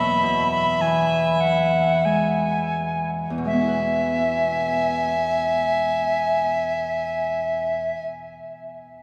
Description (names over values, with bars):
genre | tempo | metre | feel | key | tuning
celtic folk, Celtic slow air | 40-56 BPM | 3/4 | rubato | E major | A4 = 439 Hz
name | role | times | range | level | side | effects
reedy mid whistle | melody | 0.0-8.1 s | E5 to B5 | -25 LUFS | equal | none
clear fiddle | second line | 0.0-8.1 s | E5 to G#5 | -27 LUFS | equal | none
Celtic harp | accompaniment | 0.0-8.3 s | E2 to B4 | -29 LUFS | equal | none
room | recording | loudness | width
wet cathedral reverb, RT60 6.0 s | recorded in a church or concert hall | -22 LUFS | mono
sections
0.0-3.5 A section; 3.5-7.7 B section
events
slowing down 0.0-3.5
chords
0.0 E